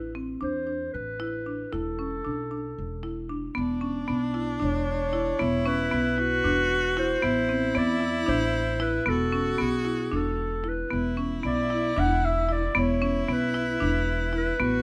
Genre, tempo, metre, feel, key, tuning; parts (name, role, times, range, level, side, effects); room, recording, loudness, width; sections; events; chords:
contemporary instrumental, chamber music in an uneven meter; 228 BPM (eighths); 7/8; straight; A4 = 441 Hz
dark clarinet; melody; 0.0-14.8 s; G#4 to F#5; -31 LUFS; equal
marimba with hard mallets; arpeggios; 0.0-14.7 s; B3 to E4; -31 LUFS; equal
upright bass; bass; 0.0-14.8 s; E1 to E2; -34 LUFS; equal
clear viola; second line; 3.6-14.8 s; D4 to F#4; -34 LUFS; equal
light reverb; close, detailed microphones; -27 LUFS; mono
0.0-3.6 A section; 3.6-14.8 A section
0.0 Amadd9; 1.7 E5; 7.2 Amadd9; 9.1 E5